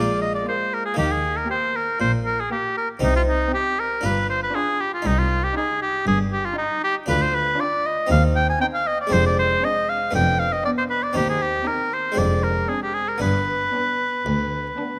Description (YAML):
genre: classical, baroque-style concerto movement with solo episodes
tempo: 118 BPM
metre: 4/4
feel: straight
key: unclear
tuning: A4 = 436 Hz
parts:
  - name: clear oboe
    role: melody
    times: 0.0-15.0 s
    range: Eb4 to Ab5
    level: -24 LUFS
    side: equal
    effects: none
  - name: harpsichord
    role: accompaniment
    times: 0.0-15.0 s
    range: C2 to F4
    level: -30 LUFS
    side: equal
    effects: none
  - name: rich chamber double bass section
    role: bass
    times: 0.0-14.7 s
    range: F1 to Eb2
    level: -28 LUFS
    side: equal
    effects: none
  - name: warm chamber cello section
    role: bass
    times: 0.0-14.7 s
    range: C2 to Eb3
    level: -29 LUFS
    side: equal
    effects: none
  - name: warm chamber violin section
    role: melody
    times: 0.5-15.0 s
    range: none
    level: barely audible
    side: none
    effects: none
  - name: rich chamber violin section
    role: second line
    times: 0.5-15.0 s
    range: D4 to G4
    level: -40 LUFS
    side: equal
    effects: none
  - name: dark chamber viola section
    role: accompaniment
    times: 0.5-15.0 s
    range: Bb3 to Eb4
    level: -36 LUFS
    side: equal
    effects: none
room: moderate concert hall reverb, RT60 2.4 s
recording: none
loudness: -22 LUFS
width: mono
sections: 0.0-15.0 A section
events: none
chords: 0.0 Bb5; 1.0 Eb; 3.0 Cm; 4.0 G5; 5.1 Cm; 7.1 G5/D; 8.1 Cm/Eb; 9.1 Dm7b5/F; 10.1 G7/F; 11.2 Cm/Eb; 12.2 Dm7b5/F; 13.2 G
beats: 0.47 | 0.98 1.50 2.01 2.52 | 3.02 3.54 4.04 4.55 | 5.06 5.57 6.08 6.58 | 7.09 7.59 8.10 8.61 | 9.12 9.63 10.14 10.65 | 11.15 11.66 12.17 12.69 | 13.21 13.74 14.26 14.79